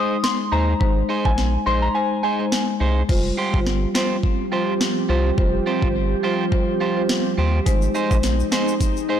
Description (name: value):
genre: dancehall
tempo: 105 BPM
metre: 4/4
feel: swing 56% on 16ths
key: unclear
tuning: A4 = 440 Hz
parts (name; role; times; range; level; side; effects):
- soft synth bell; melody; 0.0-2.4 s; Ab5 to C6; -24 LUFS; left 2 dB; chorus, ping-pong delay
- marimba with medium mallets; accompaniment; 0.0-9.2 s; G3 to C5; -24 LUFS; left 2 dB; none
- electric guitar at the edge of break-up; arpeggios; 0.0-9.2 s; Eb4 to C5; -26 LUFS; right 4 dB; ping-pong delay
- island pop drum kit; drums; 0.2-9.0 s; crash cymbal, hi-hat, kick drum, snare drum; -22 LUFS; equal; overdrive
- warm sub bass; bass; 0.5-8.4 s; F1 to Eb2; -21 LUFS; equal; none
- ethereal airy pad; sustained chords; 3.8-9.2 s; F3 to G4; -26 LUFS; right 3 dB; ensemble chorus, built-in reverb, sidechain pumping
- egg shaker; percussion; 7.7-9.1 s; none; -38 LUFS; left 11 dB; none
room: light reverb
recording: blown-out, overdriven recording, overdrive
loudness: -18 LUFS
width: side -9 dB against mid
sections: 0.0-3.1 A section; 3.1-9.2 B section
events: kick muted 1.9-3.1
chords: 0.0 Ab; 3.1 Fsus2; 7.7 Ab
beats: 0.24 | 0.81 1.38 1.95 2.52 | 3.09 3.66 4.24 4.81 | 5.38 5.95 6.52 7.09 | 7.66 8.24 8.81